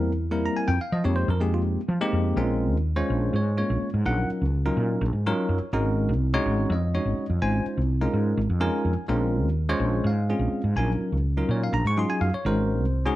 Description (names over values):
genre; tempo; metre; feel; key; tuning
jazz; 250 BPM (eighths); 7/8; straight; Bb minor; A4 = 440 Hz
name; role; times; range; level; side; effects
bell-like tine electric piano; accompaniment; 0.0-13.2 s; Gb3 to Db6; -26 LUFS; equal; fast stereo tremolo
woody fretless electric bass; bass; 0.0-13.1 s; Ab1 to F3; -24 LUFS; equal; none
room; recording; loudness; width
light reverb; none; -22 LUFS; side -15 dB against mid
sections
0.0-2.4 A section; 2.4-13.2 A section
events
tine electric piano fill 5.0-5.7, 8.4-9.1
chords
0.0 C7; 0.7 Fm11; 2.4 Bbm9; 4.1 Ebm9/Bb; 5.7 Ab9sus4; 7.4 Dbmaj9/Ab; 9.1 Bbm9; 10.8 Ebm9/Bb; 12.4 Ab9sus4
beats
0.21 0.45 | 0.69 0.93 1.17 1.41 1.65 1.89 2.13 | 2.37 2.61 2.85 3.09 3.33 3.57 3.81 | 4.05 4.29 4.54 4.78 5.02 5.26 5.50 | 5.74 5.98 6.22 6.46 6.70 6.94 7.17 | 7.42 7.66 7.89 8.13 8.37 8.61 8.85 | 9.09 9.33 9.57 9.81 10.05 10.29 10.53 | 10.77 11.01 11.25 11.49 11.73 11.97 12.21 | 12.45 12.69 12.93